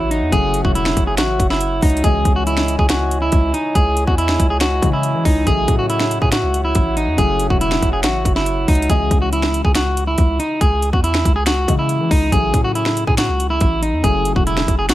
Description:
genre	hip hop, trap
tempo	140 BPM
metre	4/4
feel	half-time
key	C# minor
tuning	A4 = 440 Hz
part	electric guitar at the edge of break-up	melody	0.0-14.9 s	D#4 to G#4	-19 LUFS	right 1 dB	low-pass filter, tape echo
part	dark concert grand piano	accompaniment	0.0-14.9 s	C#3 to D#5	-26 LUFS	left 6 dB	low-pass filter
part	glass harmonica	sustained chords	0.0-8.9 s	E4 to G#5	-27 LUFS	right 1 dB	none
part	distorted 808-style bass	bass	0.0-14.9 s	E1 to E3	-20 LUFS	equal	distortion
part	trap drum kit	drums	0.1-14.9 s	finger snaps, hi-hat, kick drum, snare drum	-18 LUFS	equal	none
room	light reverb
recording	none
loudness	-14 LUFS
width	side -15 dB against mid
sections	0.0-8.9 A section; 8.9-14.9 A section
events	none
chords	0.3 F#m7; 2.0 C#madd9; 5.5 A6; 7.2 F#m7; 8.9 C#madd9; 12.3 A6; 14.0 F#m7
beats	| 0.33 0.75 1.18 1.61 | 2.04 2.47 2.90 3.33 | 3.75 4.18 4.61 5.04 | 5.47 5.90 6.33 6.75 | 7.18 7.61 8.04 8.47 | 8.90 9.32 9.75 10.18 | 10.61 11.04 11.47 11.90 | 12.32 12.75 13.18 13.61 | 14.04 14.47 14.90

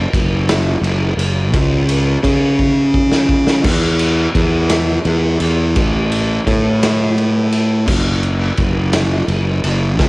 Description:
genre	quiet-loud alternative rock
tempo	57 BPM (dotted quarters)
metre	6/8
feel	straight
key	unclear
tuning	A4 = 440 Hz
part	fuzz fingered electric bass	bass	0.0-10.1 s	F#1 to C#3	-14 LUFS	equal	overdrive
part	raw garage drum kit	drums	0.1-10.1 s	crash cymbal, kick drum, ride cymbal, snare drum	-18 LUFS	equal	none
room	little or no reverb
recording	home recording on cassette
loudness	-12 LUFS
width	side -25 dB against mid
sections	0.0-10.1 A section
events	drum fill 2.6-3.6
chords	none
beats	0.48 | 1.54 2.59 | 3.65 4.71 | 5.76 6.82 | 7.88 8.94 | 10.00

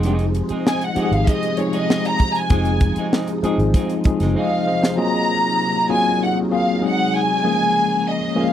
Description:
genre	lush 1970s-style soul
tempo	97 BPM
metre	4/4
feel	straight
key	unclear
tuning	A4 = 440 Hz
part	tine electric piano	accompaniment	0.0-8.5 s	F3 to Eb5	-21 LUFS	left 2 dB	overdrive, fast stereo tremolo
part	phased string machine	sustained chords	0.0-8.5 s	C3 to Ab4	-29 LUFS	equal	ensemble chorus, phaser
part	semi-hollow electric guitar	riff	0.0-4.9 s	Ab3 to Ab4	-28 LUFS	right 4 dB	none
part	vintage muted fingered electric bass	bass	0.0-4.3 s	F1 to Ab1	-21 LUFS	equal	none
part	tight funk drum kit	drums	0.0-5.0 s	hi-hat, kick drum, snare drum	-18 LUFS	equal	none
part	vibraphone with soft mallets	texture	0.0-0.2, 4.4-5.3 s	Eb5 to C6	-28 LUFS	left 2 dB	none
part	warm studio violin section	melody	0.7-8.5 s	Db5 to Bb5	-21 LUFS	equal	none
room	little or no reverb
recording	dry, close 1970s-style studio recording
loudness	-16 LUFS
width	side -10 dB against mid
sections	0.0-5.0 A section; 5.0-8.5 B section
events	violin section solo 0.0-5.0; drum fill 4.4-5.0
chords	0.0 Fm7; 5.0 Ab13; 6.8 Ab7; 7.4 Db6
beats	| 0.04 0.66 1.27 1.89 | 2.51 3.13 3.75 4.36 | 4.98 5.59 6.21 6.83 | 7.44 8.06

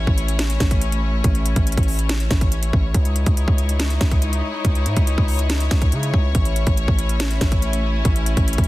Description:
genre	hip hop, trap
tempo	141 BPM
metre	4/4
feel	half-time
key	unclear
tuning	A4 = 440 Hz
part	dark studio string section	sustained chords	0.0-8.7 s	G#3 to C#5	-26 LUFS	left 2 dB	none
part	distorted 808-style bass	bass	0.0-8.7 s	A1 to C#3	-20 LUFS	equal	distortion
part	trap drum kit	drums	0.1-8.7 s	hi-hat, kick drum, snare drum	-19 LUFS	equal	none
room	little or no reverb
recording	dense, heavily limited modern master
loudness	-17 LUFS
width	side -18 dB against mid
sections	0.0-8.7 A section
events	none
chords	0.0 A; 2.9 C#madd9; 6.3 A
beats	0.39 0.82 | 1.24 1.67 2.09 2.52 | 2.94 3.37 3.80 4.22 | 4.65 5.07 5.50 5.92 | 6.35 6.78 7.20 7.63 | 8.05 8.48

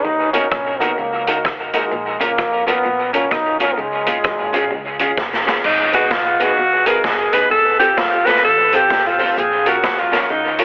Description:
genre	ska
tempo	129 BPM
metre	4/4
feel	swing 62% on 8ths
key	G# dorian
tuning	A4 = 442 Hz
part	warm trombone	melody	0.0-5.2 s	G#3 to D#4	-20 LUFS	equal	dub echo
part	electric guitar through a small old amp	riff	0.0-10.5 s	F2 to E#3	-31 LUFS	equal	none
part	upright bass	bass	0.0-10.6 s	F1 to E#2	-36 LUFS	equal	none
part	electric guitar at the edge of break-up	accompaniment	0.3-10.6 s	G#3 to C#5	-23 LUFS	equal	vibrato effect, dub echo
part	clear upright piano	stabs	0.3-10.6 s	B3 to A#4	-23 LUFS	equal	dub echo
part	street-band drum kit	drums	0.3-10.6 s	crash cymbal, hi-hat, kick drum, rim click, snare drum	-21 LUFS	equal	dub echo
part	breathy alto saxophone	melody	5.6-10.6 s	D#4 to B4	-14 LUFS	equal	dub echo
room	moderate echo chamber reverb, RT60 1.5 s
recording	heavily compressed radio sound, multiband compression, telephone sound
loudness	-14 LUFS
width	side -33 dB against mid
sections	0.0-5.6 A section; 5.6-10.6 B section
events	drum fill 5.2-5.6; alto saxophone solo 5.6-10.6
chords	0.0 D#m; 1.9 A#m; 3.8 C#; 5.6 G#m; 7.5 F; 9.4 A#m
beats	| 0.05 0.52 0.98 1.45 | 1.92 2.38 2.85 3.32 | 3.78 4.25 4.71 5.18 | 5.65 6.11 6.58 7.04 | 7.51 7.97 8.44 8.90 | 9.37 9.84 10.30

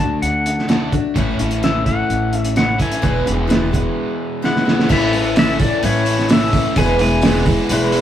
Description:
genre	folk rock and heartland rock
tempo	128 BPM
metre	4/4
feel	straight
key	A major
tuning	A4 = 441 Hz
part	pedal steel guitar	melody	0.0-8.0 s	C#5 to A5	-22 LUFS	left 3 dB	none
part	picked steel-string acoustic guitar	accompaniment	0.0-8.0 s	E2 to F#4	-21 LUFS	left 1 dB	none
part	crunchy overdriven guitar	riff	0.0-8.0 s	E2 to F#4	-23 LUFS	right 1 dB	none
part	upright bass	bass	0.0-8.0 s	E1 to D2	-23 LUFS	equal	none
part	cloth-damped thuddy drum kit	drums	0.2-8.0 s	crash cymbal, hi-hat, kick drum, snare drum	-18 LUFS	right 1 dB	none
part	tambourine	percussion	4.9-8.0 s	none	-39 LUFS	right 6 dB	none
room	moderate small room reverb, RT60 0.5 s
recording	rough rehearsal-room recording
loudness	-14 LUFS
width	side -10 dB against mid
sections	0.0-4.9 A section; 4.9-8.0 B section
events	drum fill 4.4-4.9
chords	0.0 D; 1.2 A; 3.0 E; 4.9 A; 6.8 E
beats	0.23 0.70 | 1.16 1.63 2.10 2.56 | 3.03 3.50 3.97 4.43 | 4.90 5.37 5.83 6.30 | 6.76 7.23 7.70

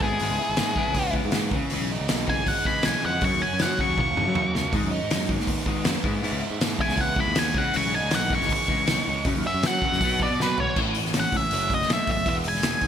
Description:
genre	indie rock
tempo	159 BPM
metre	4/4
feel	straight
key	E major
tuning	A4 = 441 Hz
part	octave-fuzz lead guitar	melody	0.0-12.9 s	G#4 to C#6	-26 LUFS	left 1 dB	distortion, ping-pong delay
part	biting overdriven guitar	riff	0.0-12.9 s	F#2 to E4	-30 LUFS	right 6 dB	lush chorus, ping-pong delay
part	clean electric guitar	riff	0.0-12.9 s	E2 to G#4	-32 LUFS	left 8 dB	lush chorus
part	overdriven picked electric bass	bass	0.0-12.9 s	E1 to F#3	-30 LUFS	equal	none
part	loose indie drum kit	drums	0.0-12.9 s	crash cymbal, hi-hat, kick drum, snare drum, toms	-26 LUFS	equal	gated reverb
room	moderate lush hall reverb, RT60 1.6 s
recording	bright 1980s-style digital production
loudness	-22 LUFS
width	side -9 dB against mid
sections	0.0-10.8 A section; 10.8-12.9 B section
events	lead electric guitar solo 0.0-10.8; drum fill 4.0-4.7, 10.4-10.8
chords	0.0 E/G#; 1.5 C#madd9; 3.2 F#; 4.7 G#m; 6.1 E; 7.6 C#madd9; 9.3 F#5; 10.0 B5; 10.8 A6; 11.5 F#m; 12.3 E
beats	| 0.21 0.59 0.97 1.34 | 1.72 2.10 2.48 2.86 | 3.23 3.61 3.99 4.37 | 4.74 5.12 5.50 5.87 | 6.25 6.63 7.00 7.38 | 7.75 8.13 8.51 8.88 | 9.26 9.64 10.01 10.39 | 10.77 11.14 11.52 11.90 | 12.27 12.65

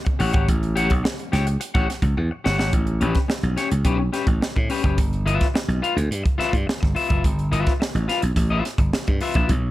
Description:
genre	funk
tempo	106 BPM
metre	4/4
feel	straight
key	unclear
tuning	A4 = 440 Hz
part	electric guitar at the edge of break-up	accompaniment	0.0-9.5 s	C#4 to G5	-26 LUFS	left 5 dB	none
part	crisp fusion drum kit	drums	0.1-9.6 s	hi-hat, kick drum, snare drum	-23 LUFS	equal	none
part	slap bass	bass	0.2-9.7 s	F#1 to A2	-22 LUFS	equal	none
room	studio reverb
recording	none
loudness	-19 LUFS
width	side -16 dB against mid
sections	0.0-2.7 A section; 2.7-9.7 B section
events	drum fill 2.2-2.7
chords	0.0 A13; 2.7 A9; 5.0 G13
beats	| 0.48 1.04 1.60 2.17 | 2.73 3.29 3.86 4.42 | 4.98 5.55 6.11 6.68 | 7.24 7.80 8.37 8.93 | 9.50

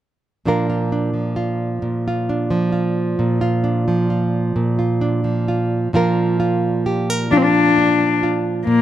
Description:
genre	acoustic folk-pop ballad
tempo	44 BPM (dotted quarters)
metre	6/8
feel	straight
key	Bb major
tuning	A4 = 439 Hz
part	nylon-string guitar	accompaniment	0.5-8.8 s	Bb2 to Bb4	-17 LUFS	right 2 dB	none
part	warm cello	melody	7.3-8.8 s	Bb3 to D4	-14 LUFS	left 4 dB	none
room	light reverb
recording	dark, warm production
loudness	-16 LUFS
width	side -12 dB against mid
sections	0.5-5.9 A section; 5.9-8.8 B section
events	none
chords	0.5 Bb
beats	| 0.46 1.83 | 3.19 4.55 | 5.92 7.30 | 8.68

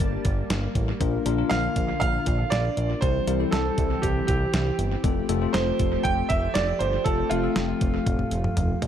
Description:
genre	synth-pop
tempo	119 BPM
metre	4/4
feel	straight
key	F major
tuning	A4 = 439 Hz
part	clear concert grand piano	melody	0.0-8.8 s	F4 to G5	-28 LUFS	right 5 dB	analog delay
part	bell-like tine electric piano	accompaniment	0.0-8.3 s	G3 to Bb4	-29 LUFS	left 14 dB	lush chorus
part	lush unison pad	sustained chords	0.0-8.9 s	D3 to A5	-32 LUFS	right 1 dB	chorus
part	fat analog bass	bass	0.0-8.9 s	F1 to C2	-27 LUFS	equal	none
part	detuned 8-bit digital drum machine	drums	0.0-8.9 s	hi-hat, kick drum, snare drum, toms	-27 LUFS	equal	analog delay
room	light reverb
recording	echo-heavy mix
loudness	-22 LUFS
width	side -9 dB against mid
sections	0.0-8.9 A section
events	drum fill 8.1-8.9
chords	0.0 Gmadd9; 1.0 Bb; 3.0 C; 5.0 Fadd9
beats	0.00 0.50 | 1.01 1.51 2.01 2.52 | 3.02 3.53 4.03 4.54 | 5.04 5.54 6.05 6.55 | 7.06 7.56 8.06 8.57

